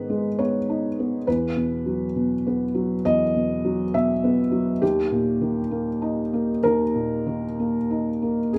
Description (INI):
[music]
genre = neoclassical minimalist piano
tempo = 60-68 BPM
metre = 4/4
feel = rubato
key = unclear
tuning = A4 = 440 Hz
[part]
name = felt-muted upright piano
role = solo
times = 0.0-8.6 s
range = D#2 to E5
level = -24 LUFS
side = equal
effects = none
[sound]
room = moderate large studio reverb, RT60 1.1 s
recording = band playing live in one room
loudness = -23 LUFS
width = mono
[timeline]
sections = 0.0-8.6 A section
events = none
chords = 0.0 G#m; 1.3 Esus2; 4.8 D#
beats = 0.38 | 1.27 2.16 3.04 3.93 | 4.82 5.70 6.61 7.55 | 8.51